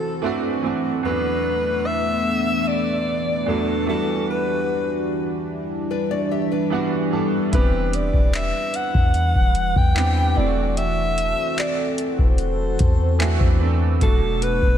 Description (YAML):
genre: contemporary R&B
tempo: 74 BPM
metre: 4/4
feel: straight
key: E minor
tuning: A4 = 440 Hz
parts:
  - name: warm alto saxophone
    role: melody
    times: 0.0-14.8 s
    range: A4 to G5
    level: -24 LUFS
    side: left 1 dB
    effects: ping-pong delay
  - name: clear concert grand piano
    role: accompaniment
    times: 0.0-14.8 s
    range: E2 to A5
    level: -26 LUFS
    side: right 5 dB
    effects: analog chorus
  - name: chorused pulse-width pad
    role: sustained chords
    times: 0.0-14.8 s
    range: B2 to B4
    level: -25 LUFS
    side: equal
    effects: none
  - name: downlifter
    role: sound effects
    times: 0.0-1.0 s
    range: none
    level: barely audible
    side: none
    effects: none
  - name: nylon-string guitar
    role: arpeggios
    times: 5.9-7.5 s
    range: D4 to E5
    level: -27 LUFS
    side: left 7 dB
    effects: lush chorus, ping-pong delay
  - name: clean 808-style bass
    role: bass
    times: 7.5-14.8 s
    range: E1 to E2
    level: -21 LUFS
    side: equal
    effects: none
  - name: booming analog drum machine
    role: drums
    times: 7.5-14.8 s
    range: handclaps, hi-hat, kick drum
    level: -20 LUFS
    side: equal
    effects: none
room: moderate lush hall reverb, RT60 2.0 s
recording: dreamy mix soaked in reverb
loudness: -18 LUFS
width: side -9 dB against mid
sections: 0.0-14.8 A section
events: grand piano fill 6.3-7.5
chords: 0.0 D7/E; 1.0 Bm7/E; 3.9 Em9; 7.5 Cmaj9/E; 10.4 D7/E; 14.0 Bm7/E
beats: 0.23 | 1.04 1.85 2.66 3.47 | 4.28 5.09 5.91 6.72 | 7.53 8.34 9.15 9.96 | 10.77 11.58 12.39 13.20 | 14.01